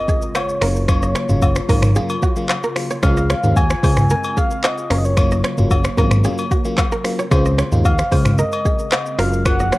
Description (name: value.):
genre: afrobeats.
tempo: 112 BPM.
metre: 4/4.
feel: straight.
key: unclear.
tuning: A4 = 440 Hz.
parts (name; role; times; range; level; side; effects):
soft struck synth lead; melody; 0.0-9.8 s; C5 to Ab5; -24 LUFS; equal; chorus, cassette tape, analog delay.
hollow soft pad; sustained chords; 0.0-9.8 s; Db3 to F4; -30 LUFS; left 1 dB; chorus, cassette tape.
impact; sound effects; 0.0-0.9 s; none; -41 LUFS; equal; none.
kora; riff; 0.1-9.8 s; Gb4 to Eb5; -26 LUFS; right 2 dB; cassette tape, analog delay.
afro-pop drum kit; drums; 0.1-9.8 s; finger snaps, handclaps, hi-hat, kick drum, rim click, shaker, toms; -18 LUFS; equal; cassette tape.
agogo bells and woodblock; percussion; 0.4-9.6 s; none; -27 LUFS; left 3 dB; none.
FM electric piano; accompaniment; 0.6-9.8 s; Db3 to F4; -25 LUFS; left 1 dB; chorus, phaser, cassette tape.
fat analog bass; bass; 0.6-9.7 s; Gb1 to Eb2; -18 LUFS; equal; none.
room: little or no reverb.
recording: home recording on cassette.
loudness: -15 LUFS.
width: side -19 dB against mid.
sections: 0.0-9.8 A section.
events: impact 0.0-0.9.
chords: 0.0 Dbmaj7; 0.6 Gbmaj7; 3.0 Dbmaj7; 4.9 Gbmaj7; 7.3 Dbmaj7; 9.2 Gbmaj7.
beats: 0.35 | 0.89 1.42 1.96 2.49 | 3.03 3.56 4.10 4.64 | 5.17 5.71 6.24 6.78 | 7.31 7.85 8.39 8.92 | 9.46.